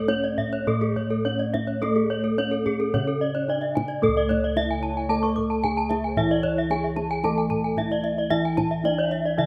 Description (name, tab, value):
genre	Balinese gamelan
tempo	111 BPM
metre	4/4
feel	uneven beats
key	unclear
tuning	A4 = 440 Hz
part	gamelan-type bronze metallophone	melody	0.0-9.5 s	A3 to A4	-33 LUFS	equal	none
part	gamelan-type bronze metallophone	accompaniment	0.0-9.5 s	C#3 to A3	-31 LUFS	equal	none
part	gamelan-type bronze metallophone	arpeggios	0.0-9.2 s	G#4 to D6+35c	-34 LUFS	equal	none
part	gamelan-type bossed gongs	bass	0.0-9.5 s	C#2 to A4	-33 LUFS	equal	none
part	gamelan-type bronze metallophone	arpeggios	0.1-9.5 s	G#4 to C#6	-29 LUFS	equal	none
part	kendang	percussion	0.1-9.4 s	none	-34 LUFS	equal	none
part	bansuri	second line	4.8-9.5 s	G#4 to E5	-39 LUFS	equal	none
room	light reverb, small room reverb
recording	rough home demo mix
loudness	-24 LUFS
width	mono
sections	0.0-4.0 A section; 4.0-9.5 B section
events	none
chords	none